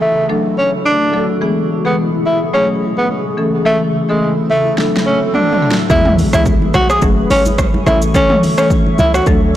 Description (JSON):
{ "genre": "afrobeats", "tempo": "107 BPM", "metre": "4/4", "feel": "swing 55% on 16ths", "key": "unclear", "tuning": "A4 = 441 Hz", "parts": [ { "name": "breathy tenor saxophone", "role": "melody", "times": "0.0-9.3 s", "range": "G#3 to G#4", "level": "-15 LUFS", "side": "equal", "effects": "digital delay" }, { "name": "granular cloud pad", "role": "sustained chords", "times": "0.0-9.6 s", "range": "B2 to D6", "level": "-22 LUFS", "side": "right 1 dB", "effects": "built-in reverb" }, { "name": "downlifter, swell and impact", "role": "sound effects", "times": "0.0-8.1 s", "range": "none", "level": "-28 LUFS", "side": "equal", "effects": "none" }, { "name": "marimba with medium mallets", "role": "accompaniment", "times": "0.3-9.6 s", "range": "E3 to A4", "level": "-17 LUFS", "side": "left 2 dB", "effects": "none" }, { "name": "deep house drum kit", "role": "drums", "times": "4.8-9.4 s", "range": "hi-hat, kick drum, rim click, shaker, snare drum, toms", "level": "-16 LUFS", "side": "right 1 dB", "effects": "overdrive" }, { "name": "short 808-style bass", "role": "bass", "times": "5.9-9.6 s", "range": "F#1 to E2", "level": "-17 LUFS", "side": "equal", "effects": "none" }, { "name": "congas", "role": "percussion", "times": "5.9-9.1 s", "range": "none", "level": "-23 LUFS", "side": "right 1 dB", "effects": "none" } ], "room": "light reverb", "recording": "blown-out, overdriven recording, overdrive", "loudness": "-11 LUFS", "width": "side -12 dB against mid", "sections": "0.0-5.9 A section; 5.9-9.6 B section", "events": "drum fill 4.8-5.9; impact 5.9-8.1", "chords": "0.3 D; 1.4 E; 2.5 F#madd9; 3.4 A; 4.8 D; 5.9 E; 7.0 F#madd9; 7.9 A" }